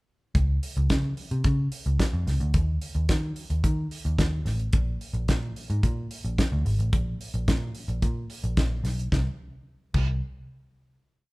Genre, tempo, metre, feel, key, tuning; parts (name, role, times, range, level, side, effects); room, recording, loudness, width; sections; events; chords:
disco; 109 BPM; 4/4; straight; A4 = 439 Hz
vintage muted picked electric bass; bass; 0.3-10.2 s; Ab1 to Eb3; -26 LUFS; equal
damped 70s drum kit; drums; 0.3-10.1 s; crash cymbal, hi-hat, kick drum, snare drum; -26 LUFS; equal
light reverb; band playing live in one room; -24 LUFS; side -23 dB against mid
0.3-9.1 verse; 9.1-11.3 final note